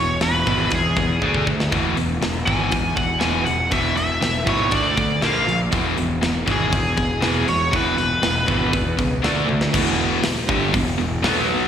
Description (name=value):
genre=hard rock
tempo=120 BPM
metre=4/4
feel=straight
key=E mixolydian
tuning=A4 = 440 Hz
part: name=nasal lead guitar with a parked wah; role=melody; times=0.0-9.2 s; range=G#4 to G#5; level=-22 LUFS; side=equal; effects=overdrive, slapback echo
part: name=overdriven semi-hollow guitar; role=riff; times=0.0-11.7 s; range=E2 to D4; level=-25 LUFS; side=right 8 dB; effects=slapback echo
part: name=tight distorted guitar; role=riff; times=0.0-11.7 s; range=E2 to D4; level=-24 LUFS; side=left 9 dB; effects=distortion, slapback echo
part: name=fuzz picked electric bass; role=bass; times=0.0-11.7 s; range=E1 to E2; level=-24 LUFS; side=equal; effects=overdrive
part: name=tight metal drum kit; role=drums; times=0.2-11.3 s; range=crash cymbal, hi-hat, kick drum, snare drum, toms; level=-25 LUFS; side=equal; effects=none
part: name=crunchy overdriven guitar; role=riff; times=9.7-11.7 s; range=E2 to B3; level=-29 LUFS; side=equal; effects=none
room=studio ambience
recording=live gig heard through the venue's PA, recital hall reverb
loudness=-17 LUFS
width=side -9 dB against mid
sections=0.0-9.7 A section; 9.7-11.7 B section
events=drum fill 1.2-1.7, 9.5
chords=0.0 E; 1.2 D5; 1.7 E; 4.7 D5; 5.2 A#5; 5.7 E; 9.2 D5; 9.7 E5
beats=0.21 0.71 1.22 | 1.72 2.22 2.72 3.22 | 3.72 4.22 4.72 5.22 | 5.72 6.22 6.72 7.22 | 7.72 8.22 8.72 9.22 | 9.72 10.22 10.72 11.22